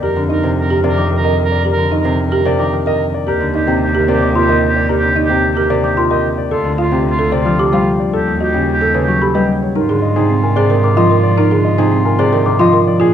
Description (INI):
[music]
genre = classical, minimalist pattern music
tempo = 111 BPM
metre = 3/4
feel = straight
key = Eb lydian, Ab lydian from 9.8 s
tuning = A4 = 438 Hz
[part]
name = warm concert grand piano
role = melody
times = 0.0-13.1 s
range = G4 to F5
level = -21 LUFS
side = left 9 dB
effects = none
[part]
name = warm oboe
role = second line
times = 0.0-13.1 s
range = D4 to Bb4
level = -21 LUFS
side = right 1 dB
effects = none
[part]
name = Celtic harp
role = accompaniment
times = 0.0-13.1 s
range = C3 to G3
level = -19 LUFS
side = left 2 dB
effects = none
[part]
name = folk marimba with medium mallets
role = arpeggios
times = 0.0-13.1 s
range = C4 to C5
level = -17 LUFS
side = right 5 dB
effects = none
[part]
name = rich cello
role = bass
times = 0.0-13.1 s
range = D2 to Bb2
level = -18 LUFS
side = right 2 dB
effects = none
[part]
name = celesta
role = arpeggios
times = 1.0-12.8 s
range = Ab5 to F6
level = -21 LUFS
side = left 5 dB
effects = none
[sound]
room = wet recital hall reverb, RT60 1.4 s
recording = dark, warm production, faint mains hum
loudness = -12 LUFS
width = side -9 dB against mid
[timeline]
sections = 0.0-9.8 A section; 9.8-13.1 B section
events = none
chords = 0.0 F9sus4; 3.3 Ebmaj7; 6.5 Dm7; 8.1 Eb7alt; 9.8 Ab69